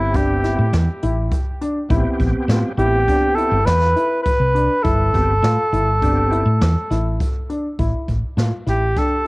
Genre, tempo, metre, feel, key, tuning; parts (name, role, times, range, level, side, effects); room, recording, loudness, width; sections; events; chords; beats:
progressive instrumental, band music in an uneven meter; 102 BPM; 5/4; straight; A minor; A4 = 440 Hz
mellow cor anglais; melody; 0.0-9.3 s; E4 to B4; -19 LUFS; equal; cassette tape, analog delay
bright tonewheel organ; accompaniment; 0.0-6.4 s; B3 to G4; -25 LUFS; right 1 dB; chorus vibrato, fast rotary speaker
woody fretless electric bass; bass; 0.0-8.9 s; G1 to A2; -18 LUFS; equal; lush chorus
dark grand piano; arpeggios; 0.1-9.1 s; D4 to F4; -26 LUFS; left 2 dB
jazz brush drum kit; drums; 0.1-9.1 s; hi-hat, kick drum, snare drum; -23 LUFS; equal; cassette tape
light reverb, small room ambience; home recording on cassette; -16 LUFS; side -24 dB against mid
0.0-7.8 A section; 7.8-9.3 B section
0.0 Am7; 7.8 A7(no3)
0.14 0.73 1.32 | 1.91 2.49 3.08 3.67 4.26 | 4.84 5.43 6.02 6.61 7.19 | 7.78 8.37 8.96